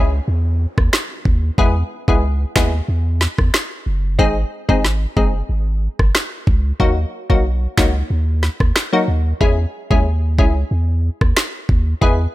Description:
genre	dancehall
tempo	92 BPM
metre	4/4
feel	straight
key	unclear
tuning	A4 = 441 Hz
part	wavetable chord stab	accompaniment	0.0-12.2 s	Gb3 to Ab4	-20 LUFS	left 2 dB	sidechain pumping
part	punchy sub bass	bass	0.0-12.3 s	Gb1 to Fb2	-18 LUFS	equal	none
part	downlifter	sound effects	0.1-1.6 s	none	-42 LUFS	right 1 dB	none
part	island pop drum kit	drums	0.8-12.2 s	finger snaps, kick drum, rim click, snare drum	-16 LUFS	equal	none
room	little or no reverb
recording	none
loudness	-15 LUFS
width	side -16 dB against mid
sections	0.0-12.3 A section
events	none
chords	0.0 Dbm; 1.6 E; 4.2 Ab; 6.8 Ebm; 9.4 Dbm

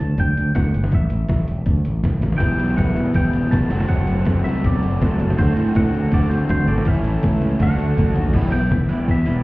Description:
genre	indie rock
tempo	162 BPM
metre	4/4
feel	straight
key	E minor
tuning	A4 = 440 Hz
part	twangy electric guitar	melody	0.0-9.4 s	C5 to A5	-30 LUFS	equal	plate reverb
part	growling fingered electric bass	bass	0.0-9.4 s	E1 to A2	-20 LUFS	equal	overdrive
part	trip hop sampler-style drum kit	drums	0.0-9.3 s	crash cymbal, hi-hat, kick drum, snare drum, toms	-20 LUFS	equal	none
part	overdriven electric guitar	riff	2.4-9.4 s	E2 to F#4	-24 LUFS	left 3 dB	none
part	raw garage guitar	riff	2.4-9.4 s	A2 to B4	-25 LUFS	right 3 dB	overdrive, analog chorus
room	little or no reverb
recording	heard muffled through a wall, stone room reverb, EQ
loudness	-16 LUFS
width	side -20 dB against mid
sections	0.0-8.3 A section; 8.3-9.4 B section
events	drum fill 8.0-8.3; clean electric guitar solo 8.3-9.4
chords	0.0 D; 0.9 A5; 2.4 Emadd9; 3.7 F#dim; 5.4 D7; 6.9 A; 7.6 D; 8.3 Em

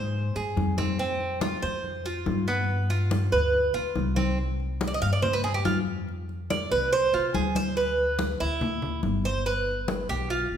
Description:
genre	latin, Cuban son and guajira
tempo	142 BPM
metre	4/4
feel	straight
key	unclear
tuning	A4 = 440 Hz
part	Cuban tres	arpeggios	0.0-10.6 s	B3 to F5	-27 LUFS	right 2 dB	none
part	upright bass	bass	0.0-10.6 s	G1 to Ab2	-29 LUFS	left 1 dB	none
part	congas	percussion	0.1-10.6 s	none	-31 LUFS	left 2 dB	none
room	wet recital hall reverb, RT60 1.6 s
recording	recorded in a church or concert hall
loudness	-24 LUFS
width	side -8 dB against mid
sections	0.0-4.4 A section; 4.4-10.6 B section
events	Cuban tres solo 4.4-10.6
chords	0.0 Ab; 1.0 Fsus2; 2.7 G7; 4.4 C5; 6.1 F5; 7.8 G6; 9.5 G

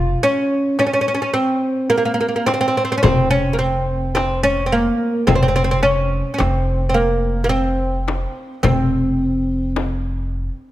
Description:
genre	Arabic maqam ensemble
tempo	107 BPM (eighths)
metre	10/8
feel	straight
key	unclear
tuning	A4 = 440 Hz
part	oud	melody	0.0-9.7 s	Bb3 to F4	-18 LUFS	right 1 dB	none
part	upright bass	bass	0.0-10.5 s	F1	-20 LUFS	equal	none
part	darbuka	percussion	0.8-10.0 s	none	-23 LUFS	left 2 dB	none
part	frame drum	percussion	0.8-10.0 s	none	-25 LUFS	left 5 dB	none
room	light reverb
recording	none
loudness	-16 LUFS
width	side -14 dB against mid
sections	0.0-10.7 A section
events	none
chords	none

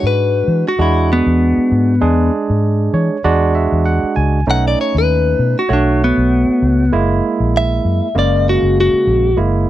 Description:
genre	straight-eighth soul blues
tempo	98 BPM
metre	4/4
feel	swing 55% on 16ths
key	unclear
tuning	A4 = 441 Hz
part	direct-recorded clean electric guitar	melody	0.0-9.4 s	B3 to F#5	-15 LUFS	left 2 dB	phaser
part	barky tine electric piano	accompaniment	0.0-9.7 s	C#3 to G#5	-18 LUFS	right 4 dB	none
part	vintage muted fingered electric bass	bass	0.0-9.6 s	F#1 to E3	-16 LUFS	left 1 dB	none
room	little or no reverb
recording	dry, close 1970s-style studio recording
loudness	-12 LUFS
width	side -13 dB against mid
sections	0.0-9.7 A section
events	clean electric guitar solo 0.0-9.7; tine electric piano fill 2.6-4.5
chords	0.0 E7; 4.5 B7; 6.9 F#7

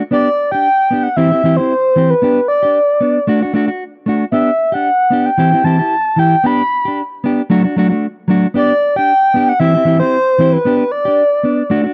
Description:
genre	highlife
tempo	114 BPM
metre	4/4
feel	swing 54% on 16ths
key	G major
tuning	A4 = 438 Hz
part	mellow electric guitar	accompaniment	0.0-11.9 s	E3 to G4	-16 LUFS	equal	none
part	reedy FM lead	melody	0.1-11.7 s	B4 to B5	-15 LUFS	equal	chorus, tremolo
room	little or no reverb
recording	dry, close 1970s-style studio recording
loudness	-14 LUFS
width	mono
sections	0.0-11.9 A section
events	none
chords	0.1 G; 1.2 C; 2.2 G; 3.3 D; 4.3 G; 5.4 C; 6.4 G; 7.5 D; 8.6 G; 9.6 C; 10.7 G

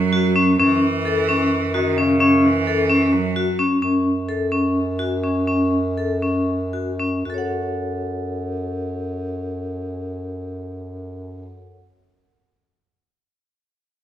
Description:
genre	contemporary instrumental, chamber music in an uneven meter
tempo	222-260 BPM (eighths)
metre	7/8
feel	straight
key	F# minor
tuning	A4 = 439 Hz
part	bright cello	second line	0.0-3.6 s	C#3 to F#3	-23 LUFS	right 5 dB	none
part	mellow bass clarinet	bass	0.0-11.7 s	F#2	-25 LUFS	equal	none
part	vibraphone with hard mallets	arpeggios	0.1-11.8 s	C#4 to F#5	-20 LUFS	left 1 dB	none
room	moderate recital hall reverb, RT60 1.6 s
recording	minimal, uncompressed stereo recording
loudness	-18 LUFS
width	side -11 dB against mid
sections	0.0-3.8 A section; 3.8-7.3 B section; 7.3-11.1 C section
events	slowing down 3.8-7.3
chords	0.0 F#5; 7.3 F#m

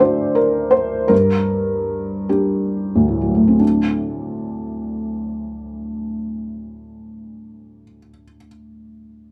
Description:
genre	neoclassical minimalist piano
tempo	44-56 BPM (dotted quarters)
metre	6/8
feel	rubato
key	unclear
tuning	A4 = 440 Hz
part	felt-muted upright piano	solo	0.0-9.3 s	D2 to E5	-20 LUFS	equal	none
room	light reverb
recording	none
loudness	-19 LUFS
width	mono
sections	0.0-3.6 A section; 3.6-8.7 B section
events	slowing down 0.0-3.6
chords	0.0 D; 1.1 Gm; 3.6 D7

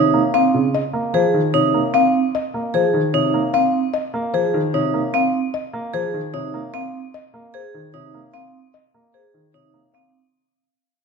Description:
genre	classical, minimalist pattern music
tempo	150 BPM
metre	4/4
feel	straight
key	Db major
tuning	A4 = 440 Hz
part	buzzing marimba with soft mallets	melody	0.0-10.2 s	C5 to F5	-21 LUFS	left 9 dB	none
part	warm baby grand piano	accompaniment	0.0-10.0 s	C3 to Bb3	-23 LUFS	equal	none
part	vibraphone with medium hard mallets	arpeggios	0.0-10.2 s	C4 to Ab4	-21 LUFS	right 8 dB	none
room	moderate scoring stage reverb, RT60 1.8 s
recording	none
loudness	-17 LUFS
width	side -5 dB against mid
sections	0.0-10.3 A section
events	fade-out 0.0-10.3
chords	0.0 Dbsus2 (rootless)

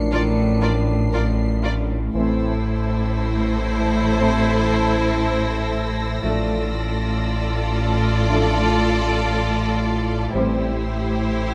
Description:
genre	cinematic, suspense film score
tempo	59 BPM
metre	4/4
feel	straight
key	A phrygian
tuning	A4 = 440 Hz
part	clear trombone section	sustained chords	0.0-10.7 s	E3 to D4	-31 LUFS	equal	none
part	mellow French horn section	sustained chords	0.0-10.7 s	C4 to C5	-30 LUFS	equal	none
part	sub bass with octave	drone	0.0-11.5 s	A1	-28 LUFS	equal	none
part	warm symphonic violin section	texture	0.0-11.5 s	E6 to C#7	-38 LUFS	equal	none
part	warm symphonic violin section	melody	0.1-11.5 s	C5 to D5	-31 LUFS	equal	none
part	warm symphonic violin section	second line	0.1-11.5 s	G4 to Bb4	-31 LUFS	equal	none
part	clear symphonic viola section	accompaniment	0.1-11.5 s	E4 to F4	-30 LUFS	equal	none
part	clear symphonic double bass section	bass	0.1-11.5 s	A1	-28 LUFS	equal	none
part	rich studio cello section	bass	0.1-11.5 s	A2	-27 LUFS	equal	none
room	moderate scoring stage reverb, RT60 1.7 s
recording	close, detailed microphones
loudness	-21 LUFS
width	mono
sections	0.0-11.5 A section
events	none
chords	0.0 Bb/A; 2.1 Am; 6.2 Dm/A; 10.3 C/A

